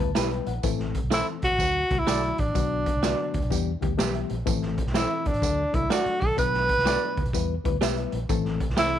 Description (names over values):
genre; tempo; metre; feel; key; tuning
uptempo 1960s-style soul; 125 BPM; 4/4; swing 65% on 8ths; A dorian; A4 = 440 Hz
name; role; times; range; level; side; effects
reed electric piano; accompaniment; 0.0-9.0 s; D3 to A5; -31 LUFS; left 13 dB; none
vintage muted fingered electric bass; bass; 0.0-9.0 s; A1 to E2; -30 LUFS; right 1 dB; tube saturation
electric guitar through a small old amp; stabs; 0.1-8.9 s; E4 to E5; -32 LUFS; right 11 dB; slapback echo
raw garage drum kit; drums; 0.2-8.9 s; hi-hat, kick drum, snare drum; -28 LUFS; equal; none
tambourine; percussion; 0.2-8.9 s; none; -36 LUFS; right 13 dB; none
breathy tenor saxophone; melody; 1.1-9.0 s; D4 to B4; -25 LUFS; right 1 dB; none
room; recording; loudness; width
small room ambience; 1960s-style stereo with parts hard left and right; -23 LUFS; side -10 dB against mid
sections
0.0-9.0 A section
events
reed electric piano fill 0.0-0.6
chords
0.0 Em; 0.6 Am; 1.6 D; 2.6 Bm; 3.5 Em; 4.5 Am; 5.4 D; 6.4 Bm; 7.3 Em; 8.3 Am